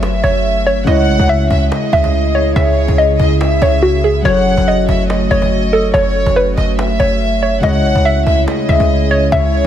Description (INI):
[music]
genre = hip hop, trap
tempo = 142 BPM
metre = 4/4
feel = half-time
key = F# dorian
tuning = A4 = 442 Hz
[part]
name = hollow square pluck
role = melody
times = 0.0-9.7 s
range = F#4 to E5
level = -16 LUFS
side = equal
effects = chorus, digital delay
[part]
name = warm studio violin section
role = second line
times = 0.0-9.7 s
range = C#5 to F#5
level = -20 LUFS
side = equal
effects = digital delay
[part]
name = tine electric piano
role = accompaniment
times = 0.0-9.7 s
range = C#3 to C#5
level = -19 LUFS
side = left 2 dB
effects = lush chorus
[part]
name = glassy FM pad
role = sustained chords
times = 0.0-9.7 s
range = C#3 to G#4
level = -20 LUFS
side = right 2 dB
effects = ensemble chorus, built-in reverb
[part]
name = clean 808-style bass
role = bass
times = 0.0-9.7 s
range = F#1 to C#2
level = -16 LUFS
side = equal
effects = none
[part]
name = cajon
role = drums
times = 0.0-9.7 s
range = none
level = -24 LUFS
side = equal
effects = none
[sound]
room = light reverb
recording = vinyl crackle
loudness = -11 LUFS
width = side -10 dB against mid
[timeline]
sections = 0.0-9.7 A section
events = none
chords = 0.0 F#m; 0.9 C#m; 4.3 F#m; 7.6 C#m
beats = 0.03 0.45 | 0.87 1.29 1.72 2.14 | 2.56 2.98 3.41 3.83 | 4.25 4.67 5.10 5.52 | 5.94 6.36 6.79 7.21 | 7.63 8.05 8.48 8.90 | 9.32